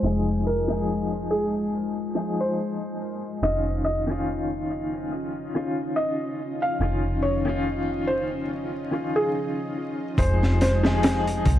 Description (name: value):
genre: trip hop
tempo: 71 BPM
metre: 4/4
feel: swing 56% on 16ths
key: F minor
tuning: A4 = 442 Hz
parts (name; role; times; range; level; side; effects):
- felt-muted upright piano; melody; 0.0-11.2 s; Ab4 to F5; -28 LUFS; right 1 dB; vintage 12-bit sampler grit, dub echo
- warm upright piano; accompaniment; 0.0-11.6 s; Eb3 to Ab4; -28 LUFS; left 2 dB; tremolo, vintage 12-bit sampler grit, tape echo
- string machine, cellos; sustained chords; 0.0-11.6 s; Ab3 to Eb5; -30 LUFS; left 1 dB; ensemble chorus
- deep dub fingered electric bass; bass; 0.0-11.6 s; F1 to C2; -26 LUFS; equal; tube saturation
- crunchy breakbeat drum kit; drums; 10.2-11.6 s; hi-hat, kick drum, snare drum; -23 LUFS; equal; none
room: light reverb, small room reverb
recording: dark, warm production, vinyl crackle, low-pass filter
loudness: -23 LUFS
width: side -12 dB against mid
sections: 0.0-10.2 A section; 10.2-11.6 B section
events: filter sweep on string machine 0.0-10.2; filter sweep 0.0-10.2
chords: 0.0 Fm7; 3.4 Dbadd9/F; 10.2 Fm7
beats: | 0.04 0.88 1.73 2.57 | 3.42 4.26 5.11 5.95 | 6.80 7.64 8.49 9.34 | 10.18 11.03